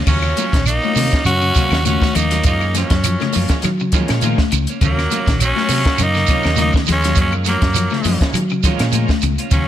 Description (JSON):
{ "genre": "afrobeat", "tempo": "102 BPM", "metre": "4/4", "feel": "swing 54% on 16ths", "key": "Eb minor", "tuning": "A4 = 440 Hz", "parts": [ { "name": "semi-hollow electric guitar", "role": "stabs", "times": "0.0-9.7 s", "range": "F3 to F4", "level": "-27 LUFS", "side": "right 5 dB", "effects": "spring reverb" }, { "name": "fingered electric bass", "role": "bass", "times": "0.0-9.7 s", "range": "Bb1 to Gb3", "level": "-19 LUFS", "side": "equal", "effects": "none" }, { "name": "raspy tenor saxophone", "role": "melody", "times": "0.1-9.7 s", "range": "Bb3 to Gb4", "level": "-20 LUFS", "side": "equal", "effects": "none" }, { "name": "raspy alto saxophone", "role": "second line", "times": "0.1-9.7 s", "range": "Gb3 to Db4", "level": "-26 LUFS", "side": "right 2 dB", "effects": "slapback echo" }, { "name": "bright tonewheel organ", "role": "accompaniment", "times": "0.1-9.7 s", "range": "Gb3 to F4", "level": "-30 LUFS", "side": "left 1 dB", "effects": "slow rotary speaker, overdrive, chorus vibrato" }, { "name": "electric guitar at the edge of break-up", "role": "arpeggios", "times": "0.1-9.7 s", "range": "Bb2 to Gb3", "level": "-25 LUFS", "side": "left 5 dB", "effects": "slapback echo" }, { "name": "compact cocktail drum kit", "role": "drums", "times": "0.1-9.7 s", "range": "crash cymbal, hi-hat, kick drum, snare drum", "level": "-19 LUFS", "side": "equal", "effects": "none" }, { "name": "congas", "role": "percussion", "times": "0.1-9.7 s", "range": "none", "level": "-25 LUFS", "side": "left 15 dB", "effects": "none" }, { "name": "shekere", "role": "percussion", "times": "0.1-9.7 s", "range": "none", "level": "-24 LUFS", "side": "right 9 dB", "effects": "none" }, { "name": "claves", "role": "percussion", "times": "0.2-9.4 s", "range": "none", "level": "-30 LUFS", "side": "left 14 dB", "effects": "none" } ], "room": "small room ambience", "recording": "none", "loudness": "-14 LUFS", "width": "side -11 dB against mid", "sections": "0.1-9.7 A section", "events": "none", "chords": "0.1 Ebm9; 2.4 Gbmaj7; 4.8 Ebm9; 7.2 Gbmaj7" }